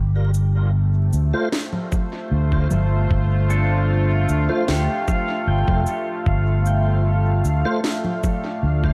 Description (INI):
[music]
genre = ambient dub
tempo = 76 BPM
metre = 4/4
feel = straight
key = unclear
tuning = A4 = 440 Hz
[part]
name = deep dark ambient pad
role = sustained chords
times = 0.3-8.9 s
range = A3 to F5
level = -29 LUFS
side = equal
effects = chorus, built-in reverb
[part]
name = fingered electric bass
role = bass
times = 0.0-8.9 s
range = F1 to D2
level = -20 LUFS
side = equal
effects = none
[part]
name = electronic shaker, snare drum and congas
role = drums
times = 0.3-8.4 s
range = none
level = -30 LUFS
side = equal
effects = overdrive, dub echo
[part]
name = tonewheel organ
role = stabs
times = 1.3-7.8 s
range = A3 to C5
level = -32 LUFS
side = equal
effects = overdrive, chorus vibrato, slow rotary speaker, dub echo
[part]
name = electronic kick drum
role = drums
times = 1.9-8.9 s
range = none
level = -24 LUFS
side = equal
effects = none
[part]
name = pedal steel guitar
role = arpeggios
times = 3.5-7.9 s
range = D4 to G5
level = -31 LUFS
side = equal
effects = dub echo
[sound]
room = light reverb, digital ambience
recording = vinyl crackle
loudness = -20 LUFS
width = mono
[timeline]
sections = 0.0-8.9 A section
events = none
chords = 0.0 F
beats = 0.74 1.53 2.32 | 3.10 3.90 4.68 5.47 | 6.26 7.05 7.84 8.63